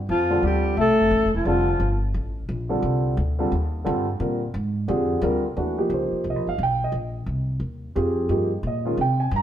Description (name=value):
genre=modal jazz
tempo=176 BPM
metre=4/4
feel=swing 62% on 8ths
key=F mixolydian, Eb mixolydian from 5.6 s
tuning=A4 = 440 Hz
part: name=upright bass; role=bass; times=0.0-9.4 s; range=Eb1 to C3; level=-25 LUFS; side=equal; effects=none
part: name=breathy alto saxophone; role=melody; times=0.1-2.0 s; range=F4 to A4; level=-22 LUFS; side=right 1 dB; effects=none
part: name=breathy bass clarinet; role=second line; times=0.1-2.0 s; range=F3 to A3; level=-24 LUFS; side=left 4 dB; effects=none
part: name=dark concert grand piano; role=accompaniment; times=0.3-9.4 s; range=D3 to Bb5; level=-24 LUFS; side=right 1 dB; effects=none
room=wet stone room reverb, RT60 1.2 s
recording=band playing live in one room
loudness=-21 LUFS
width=side -10 dB against mid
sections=0.0-5.6 A section; 5.6-9.4 B section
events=none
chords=0.0 F69; 4.2 Bb7; 5.6 Eb69